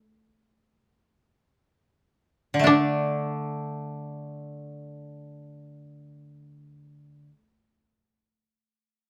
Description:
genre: japanese traditional, Japanese chamber music.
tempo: free time.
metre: none.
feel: none.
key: unclear.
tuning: A4 = 439 Hz.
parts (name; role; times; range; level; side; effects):
koto; melody; 0.0-7.4 s; D4; -24 LUFS; equal; none.
koto; accompaniment; 2.5-7.4 s; D3 to D4; -30 LUFS; equal; none.
room: light reverb.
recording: none.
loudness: -25 LUFS.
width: mono.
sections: 0.0-2.7 A section; 2.7-9.1 B section.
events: slowing down 0.0-2.7.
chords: none.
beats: free time.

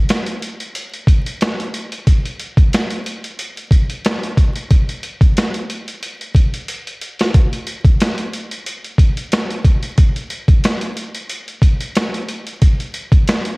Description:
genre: hip hop.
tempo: 91 BPM.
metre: 4/4.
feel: swing 55% on 16ths.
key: none.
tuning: none.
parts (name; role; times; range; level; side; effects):
boom bap sampler-style drum kit; drums; 0.1-13.6 s; hi-hat, kick drum, snare drum; -14 LUFS; equal; cassette tape.
room: light reverb.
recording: home recording on cassette, vinyl crackle.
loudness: -14 LUFS.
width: side -28 dB against mid.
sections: 0.0-7.3 A section; 7.3-13.6 B section.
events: drum fill 6.7-7.3.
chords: none.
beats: 0.09 0.75 1.41 | 2.07 2.73 3.39 4.05 | 4.71 5.37 6.03 6.69 | 7.35 8.01 8.66 9.32 | 9.98 10.64 11.30 11.96 | 12.62 13.28.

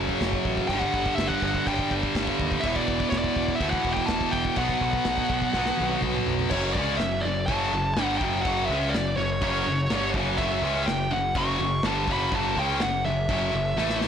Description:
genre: heavy metal.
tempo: 124 BPM.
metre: 4/4.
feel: straight.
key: F# phrygian.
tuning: A4 = 440 Hz.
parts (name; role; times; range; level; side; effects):
high-gain distorted guitar; riff; 0.0-14.1 s; E2 to C#4; -26 LUFS; equal; distortion.
growling picked electric bass; bass; 0.0-14.1 s; E1 to D#2; -32 LUFS; equal; overdrive, transformer saturation.
modern studio drum kit; drums; 0.1-14.1 s; china cymbal, crash cymbal, kick drum, snare drum, toms; -31 LUFS; equal; none.
high-gain lead guitar; melody; 0.7-14.0 s; C#5 to C#6; -28 LUFS; equal; distortion.
room: light reverb, small room ambience.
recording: blown-out, overdriven recording, overdrive.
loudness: -23 LUFS.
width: side -8 dB against mid.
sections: 0.0-6.5 A section; 6.5-14.1 B section.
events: drum fill 5.5-6.5, 13.8-14.1.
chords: 0.0 F#m; 0.7 G5; 2.6 E5; 4.6 B5; 6.5 F#5.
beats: 0.21 | 0.70 1.19 1.67 2.15 | 2.64 3.12 3.61 4.09 | 4.58 5.06 5.55 6.03 | 6.52 7.00 7.49 7.97 | 8.45 8.94 9.42 9.90 | 10.39 10.87 11.36 11.84 | 12.32 12.80 13.29 13.77.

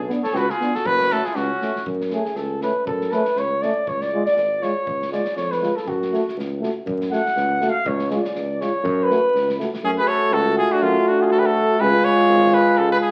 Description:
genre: balkan folk, Balkan brass band.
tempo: 121 BPM.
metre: 2/4.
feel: swing 55% on 16ths.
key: F# harmonic minor.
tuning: A4 = 440 Hz.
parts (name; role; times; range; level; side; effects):
warm tuba; bass; 0.0-12.9 s; F#1 to F#2; -29 LUFS; equal; none.
clear euphonium; accompaniment; 0.1-13.1 s; C#4 to F#4; -25 LUFS; equal; none.
warm euphonium; accompaniment; 0.1-13.1 s; G#3 to B3; -28 LUFS; equal; none.
natural country drum kit; percussion; 0.1-9.8 s; kick drum, snare drum; -40 LUFS; equal; none.
clear trumpet; melody; 0.2-1.9, 9.8-13.1 s; E#4 to C#5; -22 LUFS; equal; none.
warm flugelhorn; second line; 0.2-13.1 s; C#4 to F#5; -26 LUFS; equal; none.
room: wet large studio reverb, RT60 0.8 s.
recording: very old 78 rpm record, vinyl crackle.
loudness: -20 LUFS.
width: mono.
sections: 0.0-1.9 A section; 1.9-9.8 B section; 9.8-13.1 C section.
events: flugelhorn solo 1.9-9.8.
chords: 0.0 Bm; 0.9 F#m; 3.9 C#; 5.9 F#m; 7.9 C#; 8.8 F#m; 11.8 C#.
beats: 0.35 | 0.85 1.36 | 1.86 2.37 | 2.87 3.37 | 3.87 4.37 | 4.87 5.37 | 5.87 6.37 | 6.87 7.36 | 7.86 8.36 | 8.85 9.34 | 9.84 10.33 | 10.82 11.31 | 11.80 12.29 | 12.79.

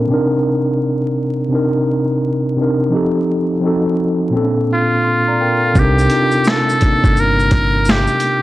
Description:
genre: lo-fi hip hop.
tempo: 85 BPM.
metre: 4/4.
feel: swing 65% on 16ths.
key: C dorian.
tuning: A4 = 440 Hz.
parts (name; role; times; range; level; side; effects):
mellow tine electric piano; accompaniment; 0.0-8.4 s; Bb2 to C6; -15 LUFS; equal; medium stereo tremolo, low-pass filter.
trumpet with metal mute; melody; 4.7-8.4 s; F4 to Bb4; -16 LUFS; equal; low-pass filter.
deep dub fingered electric bass; bass; 5.8-8.1 s; G1 to C2; -17 LUFS; equal; transformer saturation.
boom bap sampler-style drum kit; drums; 5.8-8.4 s; finger snaps, hi-hat, kick drum, shaker, snare drum; -16 LUFS; equal; none.
room: little or no reverb.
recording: dry, gritty hardware recording, vinyl crackle.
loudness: -13 LUFS.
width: side -16 dB against mid.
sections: 0.0-5.8 A section; 5.8-8.4 B section.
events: filter sweep on tine electric piano 0.0-5.8.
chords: 0.1 Cm9; 2.9 F7; 3.6 F7b9; 4.3 Bbmaj7; 5.8 Cm9.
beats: | 0.11 0.81 1.52 2.23 | 2.93 3.64 4.34 5.05 | 5.75 6.46 7.17 7.87.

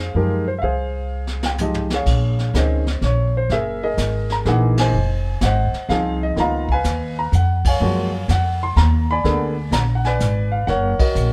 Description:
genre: jazz piano trio.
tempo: 125 BPM.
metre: 3/4.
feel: swing 67% on 8ths.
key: Bb minor.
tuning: A4 = 445 Hz.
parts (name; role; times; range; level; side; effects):
warm concert grand piano; melody; 0.0-11.3 s; D3 to C6; -24 LUFS; equal; none.
upright bass; bass; 0.0-11.3 s; F1 to Gb2; -22 LUFS; equal; none.
jazz brush drum kit; drums; 0.6-11.3 s; brushed snare drum, crash cymbal, hi-hat, kick drum, ride cymbal, snare drum, toms; -27 LUFS; equal; none.
room: light reverb.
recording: none.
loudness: -19 LUFS.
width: mono.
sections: 0.0-2.1 A section; 2.1-11.3 B section.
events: drum fill 1.1-2.1, 7.3-7.8; band accent 4.7, 7.6, 10.9.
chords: 0.0 Fm9; 2.1 Bbm11; 3.5 Gb13; 4.9 Fm7; 6.4 Db13; 7.8 Gbmaj9; 9.2 Bb7b9; 10.7 Ebm7.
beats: 0.15 | 0.63 1.11 1.59 | 2.07 2.54 3.02 | 3.50 3.98 4.46 | 4.94 5.42 5.89 | 6.37 6.85 7.33 | 7.81 8.29 8.76 | 9.24 9.72 10.20 | 10.68 11.15.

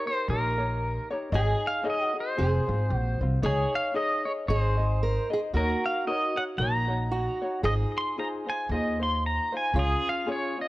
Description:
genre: Hawaiian.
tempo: 114 BPM.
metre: 4/4.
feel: swing 58% on 8ths.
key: Db major.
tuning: A4 = 440 Hz.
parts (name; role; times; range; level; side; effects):
pedal steel guitar; melody; 0.0-10.7 s; Ab4 to C6; -29 LUFS; equal; ping-pong delay.
fingerpicked old ladder-braced acoustic guitar; second line; 0.0-10.7 s; F4 to Db5; -33 LUFS; right 2 dB; none.
ukulele; accompaniment; 0.0-10.7 s; C4 to Eb5; -34 LUFS; left 2 dB; none.
upright bass; bass; 0.3-9.9 s; F1 to Eb2; -27 LUFS; equal; tube saturation.
room: studio reverb.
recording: worn, warbling old tape, cassette tape, warbly pitch drift.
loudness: -25 LUFS.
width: side -18 dB against mid.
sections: 0.0-10.7 A section.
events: none.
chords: 0.0 Eb7; 1.3 Absus4; 2.4 Fm; 3.4 Dbsus2; 5.5 Ebm7; 7.6 Ab6; 9.7 Db.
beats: 0.28 0.81 | 1.33 1.86 2.38 2.91 | 3.43 3.96 4.48 5.01 | 5.53 6.06 6.58 7.11 | 7.63 8.16 8.69 9.21 | 9.74 10.26.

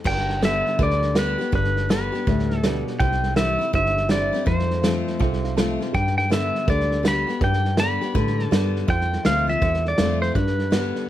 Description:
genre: honky-tonk and classic country.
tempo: 163 BPM.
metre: 4/4.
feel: swing 63% on 8ths.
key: G mixolydian.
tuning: A4 = 435 Hz.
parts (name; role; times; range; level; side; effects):
picked steel-string acoustic guitar; accompaniment; 0.0-11.1 s; F2 to G4; -27 LUFS; left 6 dB; none.
pedal steel guitar; melody; 0.1-11.1 s; B4 to B5; -24 LUFS; equal; none.
dark upright piano; accompaniment; 0.1-11.0 s; D4 to A5; -31 LUFS; right 10 dB; none.
vintage muted fingered electric bass; bass; 0.1-10.9 s; G1 to A2; -25 LUFS; equal; none.
vintage drum kit; drums; 0.1-11.0 s; crash cymbal, hi-hat, kick drum, snare drum; -25 LUFS; right 1 dB; none.
room: little or no reverb.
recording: close, detailed microphones.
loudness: -19 LUFS.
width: side -12 dB against mid.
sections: 0.1-11.1 A section.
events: upright piano fill 5.2-5.9.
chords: 0.1 G; 3.0 C; 4.5 F; 5.9 G; 8.9 F; 10.4 G.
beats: | 0.06 0.42 0.79 1.16 | 1.53 1.90 2.27 2.63 | 3.00 3.37 3.74 4.10 | 4.47 4.84 5.21 5.58 | 5.94 6.31 6.68 7.05 | 7.42 7.78 8.15 8.52 | 8.89 9.25 9.62 9.99 | 10.36 10.73.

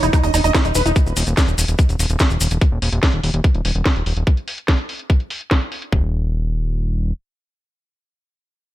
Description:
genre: psychedelic trance.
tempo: 145 BPM.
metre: 4/4.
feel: straight.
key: unclear.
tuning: A4 = 444 Hz.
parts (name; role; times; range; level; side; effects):
supersaw stab; melody; 0.0-0.9 s; Eb4 to Eb5; -23 LUFS; right 1 dB; phaser, sidechain pumping, tape echo.
woody wave-folded pluck; riff; 0.0-0.9 s; Eb4 to Eb5; -23 LUFS; right 4 dB; chorus, auto-pan, cassette tape, sidechain pumping, tape echo.
fat analog bass; bass; 0.0-7.1 s; Eb1; -19 LUFS; equal; none.
drum and bass drum kit; drums; 0.0-5.9 s; hi-hat, snare drum; -23 LUFS; equal; low-pass filter on hats, low-pass filter on cymbals, low-pass filter on snare, low-pass filter on toms, low-pass filter on room.
maracas; percussion; 0.0-2.6 s; none; -27 LUFS; left 2 dB; none.
impact; sound effects; 0.0-1.0 s; none; -34 LUFS; equal; none.
electronic kick drum; drums; 0.1-6.0 s; none; -15 LUFS; equal; none.
room: digital ambience.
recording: none.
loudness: -16 LUFS.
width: side -15 dB against mid.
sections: 0.0-5.9 A section; 5.9-8.7 B section.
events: impact 0.0-1.0.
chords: 0.0 Eb5; 5.9 N.C..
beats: 0.13 0.55 | 0.96 1.37 1.79 2.20 | 2.61 3.03 3.44 3.86 | 4.27 4.68 5.10 5.51 | 5.92 6.34 6.75.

